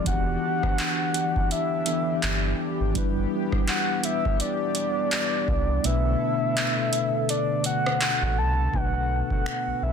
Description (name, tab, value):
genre	contemporary R&B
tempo	83 BPM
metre	4/4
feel	swing 58% on 16ths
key	B minor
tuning	A4 = 440 Hz
part	soft octave-layered synth lead	melody	0.0-9.9 s	D5 to A5	-27 LUFS	left 2 dB	chorus, tape echo
part	mellow tine electric piano	accompaniment	0.0-9.9 s	B2 to B4	-29 LUFS	equal	medium stereo tremolo
part	chorused pulse-width pad	sustained chords	0.0-9.9 s	D3 to A4	-32 LUFS	left 1 dB	none
part	sub bass with octave	bass	0.1-9.9 s	E1 to C2	-26 LUFS	equal	none
part	booming analog drum machine	drums	0.1-9.7 s	finger snaps, handclaps, hi-hat, kick drum, rim click	-27 LUFS	equal	none
room	little or no reverb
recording	dense, heavily limited modern master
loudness	-22 LUFS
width	side -7 dB against mid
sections	0.0-8.7 A section; 8.7-9.9 B section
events	kick muted 5.8-8.7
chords	0.1 Em7; 3.0 G6; 5.8 Bm7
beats	| 0.06 0.78 1.51 2.23 | 2.95 3.68 4.40 5.12 | 5.84 6.57 7.29 8.01 | 8.74 9.46